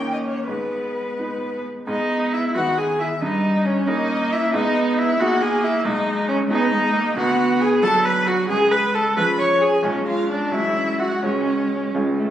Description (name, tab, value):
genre	quick classical-period movement for piano quartet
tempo	84-92 BPM (dotted quarters)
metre	6/8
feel	rubato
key	G# minor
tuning	A4 = 439 Hz
part	warm violin	melody	0.0-11.9 s	B4 to C#6	-26 LUFS	left 3 dB	none
part	rich cello	second line	0.0-12.3 s	D#3 to B3	-24 LUFS	right 1 dB	none
part	bright baby grand piano	accompaniment	0.0-12.3 s	A1 to B4	-27 LUFS	equal	none
part	clear viola	accompaniment	0.0-11.9 s	B3 to C#5	-21 LUFS	right 1 dB	none
room	moderate recital hall reverb, RT60 1.5 s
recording	recorded on a phone in the room, club reverb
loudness	-18 LUFS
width	side -11 dB against mid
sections	0.0-1.9 A section; 1.9-12.3 A section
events	none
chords	0.5 G#m; 3.2 D#7/G; 4.5 G#m; 5.9 G#m/B; 7.2 Bm/D; 8.5 C#; 9.8 C#7/B; 10.5 F#m/A; 11.2 C#sus4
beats	| 0.48 1.18 | 1.88 2.56 | 3.22 3.88 | 4.54 5.20 | 5.85 6.51 | 7.17 7.83 | 8.50 9.17 | 9.84 10.52 | 11.23 11.94